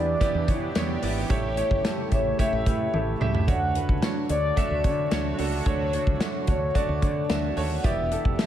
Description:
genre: 1980s-style pop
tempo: 110 BPM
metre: 4/4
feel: straight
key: D major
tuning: A4 = 439 Hz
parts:
  - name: mellow horn-like synth lead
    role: melody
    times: 0.0-8.5 s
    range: C#5 to F#5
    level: -29 LUFS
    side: left 2 dB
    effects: chorus, tape echo
  - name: warm concert grand piano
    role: accompaniment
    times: 0.0-8.5 s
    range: A2 to E5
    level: -30 LUFS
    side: right 4 dB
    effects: none
  - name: sweeping resonant pad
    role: sustained chords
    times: 0.0-8.5 s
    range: C#3 to G4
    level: -33 LUFS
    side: equal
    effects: chorus
  - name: fretless electric bass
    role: bass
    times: 0.0-8.4 s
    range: E1 to E3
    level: -30 LUFS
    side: equal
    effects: none
  - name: modern studio drum kit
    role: drums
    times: 0.2-8.5 s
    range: hi-hat, kick drum, snare drum, tambourine, toms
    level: -26 LUFS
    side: equal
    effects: gated reverb
room: light reverb, small room ambience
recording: none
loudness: -22 LUFS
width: side -11 dB against mid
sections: 0.0-8.5 A section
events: drum fill 2.9-3.5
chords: 0.0 Em7; 1.3 A7; 3.5 Dmaj7; 7.8 Em7

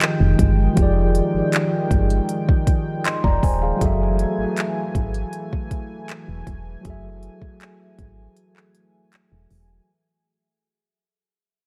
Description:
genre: contemporary R&B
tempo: 79 BPM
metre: 4/4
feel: straight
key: F# dorian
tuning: A4 = 440 Hz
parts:
  - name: mellow tine electric piano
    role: accompaniment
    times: 0.0-9.9 s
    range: F3 to C6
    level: -27 LUFS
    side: equal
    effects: dub echo
  - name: warm analog pad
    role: sustained chords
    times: 0.0-9.8 s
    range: Eb3 to G#5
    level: -29 LUFS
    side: equal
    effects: chorus
  - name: smooth R&B drum kit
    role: drums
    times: 0.0-9.7 s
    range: handclaps, hi-hat, kick drum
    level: -23 LUFS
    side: equal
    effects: none
  - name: solid FM bass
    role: bass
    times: 0.2-9.8 s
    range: Eb1 to G#1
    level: -23 LUFS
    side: equal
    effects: none
room: little or no reverb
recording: echo-heavy mix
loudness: -20 LUFS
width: mono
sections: 0.0-9.9 A section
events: fade-out 0.0-9.9; break 8.4-9.9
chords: 0.0 Fm9; 3.8 F#m9

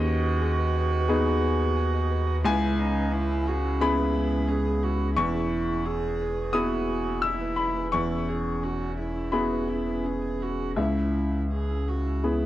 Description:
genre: neoclassical piano and strings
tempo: 86 BPM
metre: 4/4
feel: uneven beats, rubato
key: C# minor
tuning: A4 = 442 Hz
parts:
  - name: warm cello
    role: second line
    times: 0.0-12.5 s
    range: D#4 to G#4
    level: -31 LUFS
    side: right 6 dB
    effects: none
  - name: bright baby grand piano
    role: accompaniment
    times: 0.0-12.5 s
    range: C#2 to E6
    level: -27 LUFS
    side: left 2 dB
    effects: none
  - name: concert harp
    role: arpeggios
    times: 0.0-12.5 s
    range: B3 to G#5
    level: -33 LUFS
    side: equal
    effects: tape echo
  - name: pure sine sub bass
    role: bass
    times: 0.0-12.5 s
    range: E1 to D#2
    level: -29 LUFS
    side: equal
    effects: none
room: little or no reverb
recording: dry, close 1970s-style studio recording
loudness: -24 LUFS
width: side -14 dB against mid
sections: 0.0-12.5 A section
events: none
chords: 0.0 G#m/D#; 2.4 C#m7; 5.2 E; 7.9 C#m7/E; 10.8 C#m7

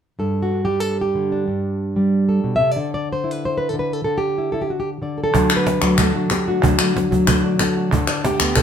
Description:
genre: flamenco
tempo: free time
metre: none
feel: none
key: G major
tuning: A4 = 440 Hz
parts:
  - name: flamenco guitar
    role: melody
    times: 0.2-8.6 s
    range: G2 to E5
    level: -18 LUFS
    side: equal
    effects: none
  - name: flamenco guitar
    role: stabs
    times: 5.3-8.6 s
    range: D3 to G4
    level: -27 LUFS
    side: right 4 dB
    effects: none
  - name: cajon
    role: percussion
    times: 5.3-8.6 s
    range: none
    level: -21 LUFS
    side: right 2 dB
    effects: none
  - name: palmas hand claps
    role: percussion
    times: 5.3-8.6 s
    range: none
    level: -22 LUFS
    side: left 2 dB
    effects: none
room: wet studio reverb, RT60 0.7 s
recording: band playing live in one room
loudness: -17 LUFS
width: side -8 dB against mid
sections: 0.2-5.3 A section; 5.3-8.6 B section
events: none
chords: 0.2 Gsus2; 2.8 Dsus2; 5.3 D; 7.9 Gadd9/D

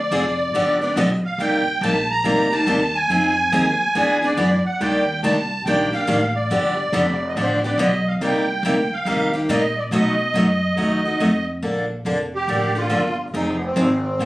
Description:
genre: acoustic string swing (jazz manouche)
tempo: 141 BPM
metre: 4/4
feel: swing 64% on 8ths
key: Bb major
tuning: A4 = 440 Hz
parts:
  - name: musette accordion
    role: melody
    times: 0.0-14.3 s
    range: Cb4 to Bb5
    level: -21 LUFS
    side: right 1 dB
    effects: none
  - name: upright bass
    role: bass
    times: 0.0-14.3 s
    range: F1 to B2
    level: -25 LUFS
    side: equal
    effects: none
  - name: picked steel-string acoustic guitar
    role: accompaniment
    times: 0.1-14.3 s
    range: B2 to A4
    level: -20 LUFS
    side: left 1 dB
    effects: none
room: little or no reverb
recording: recorded on a phone in the room, studio reverb, compression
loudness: -17 LUFS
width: side -17 dB against mid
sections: 0.0-11.6 A section; 11.6-14.3 B section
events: none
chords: 0.0 Dm7b5; 0.5 G7; 1.4 Cm7; 3.1 Fm7; 4.0 E7; 4.8 Ebmaj7; 6.5 G7; 8.2 Cm7; 9.9 B7#11; 11.6 Bbmaj7; 13.3 Fm7

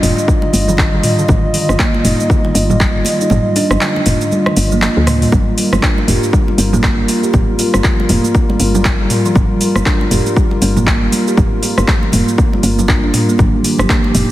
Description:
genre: afro house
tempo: 119 BPM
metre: 4/4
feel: swing 59% on 16ths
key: G minor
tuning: A4 = 440 Hz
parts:
  - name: dark analog pad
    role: sustained chords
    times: 0.0-14.3 s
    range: F3 to Eb5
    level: -20 LUFS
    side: left 1 dB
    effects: chorus, sidechain pumping
  - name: kalimba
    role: arpeggios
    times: 0.0-14.3 s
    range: D3 to G4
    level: -18 LUFS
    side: right 1 dB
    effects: sidechain pumping, digital delay
  - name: woody FM bass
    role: bass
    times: 0.0-14.2 s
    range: F1 to D2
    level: -16 LUFS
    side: equal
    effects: sidechain pumping
  - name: afro-pop drum kit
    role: drums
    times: 0.0-14.3 s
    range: handclaps, hi-hat, rim click, shaker, toms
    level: -18 LUFS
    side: equal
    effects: studio reverb
  - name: congas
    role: percussion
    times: 0.0-14.1 s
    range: none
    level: -23 LUFS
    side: right 3 dB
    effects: none
  - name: electronic kick drum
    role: drums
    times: 0.3-14.0 s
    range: none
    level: -14 LUFS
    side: equal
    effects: overdrive, studio reverb
room: light reverb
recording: heavily compressed radio sound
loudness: -11 LUFS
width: side -15 dB against mid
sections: 0.0-14.3 A section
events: kick drops out 3.3-5.3; drum fill 4.8-5.3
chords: 0.0 Ebadd9; 5.3 Gm7; 13.4 Ebadd9

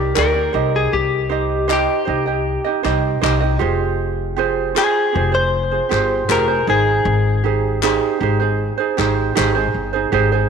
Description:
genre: acoustic pop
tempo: 78 BPM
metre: 4/4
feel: straight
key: unclear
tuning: A4 = 441 Hz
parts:
  - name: direct-recorded clean electric guitar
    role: melody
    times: 0.0-7.4 s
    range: G4 to C5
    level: -20 LUFS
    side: left 4 dB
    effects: tape echo
  - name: ukulele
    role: accompaniment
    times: 0.0-10.5 s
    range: Eb4 to Eb5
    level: -19 LUFS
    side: right 9 dB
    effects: none
  - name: upright bass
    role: bass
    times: 0.0-10.4 s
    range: F1 to D2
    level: -21 LUFS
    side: left 2 dB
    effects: tube saturation
  - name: group handclap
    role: percussion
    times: 0.2-9.6 s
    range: none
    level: -26 LUFS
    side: left 14 dB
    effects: none
room: moderate plate reverb, RT60 2.6 s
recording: 1960s-style stereo with parts hard left and right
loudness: -15 LUFS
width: side -6 dB against mid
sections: 0.0-10.1 A section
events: none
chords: 0.0 Ebmaj7; 0.6 Cm; 3.6 Fmadd9; 6.7 Abmaj7

